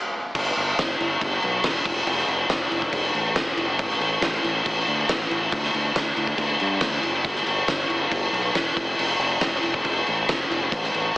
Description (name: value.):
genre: quiet-loud alternative rock.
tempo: 139 BPM.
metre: 4/4.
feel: straight.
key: unclear.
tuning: A4 = 439 Hz.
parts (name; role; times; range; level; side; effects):
growling fingered electric bass; bass; 0.3-11.1 s; E1 to G2; -30 LUFS; equal; overdrive.
oversized low-tuned drum kit; drums; 0.3-11.0 s; crash cymbal, kick drum, snare drum; -21 LUFS; equal; none.
room: light reverb.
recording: heavily compressed radio sound, AM radio sound.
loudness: -21 LUFS.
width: side -20 dB against mid.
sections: 0.3-11.2 A section.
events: stop 0.0-0.3.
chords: none.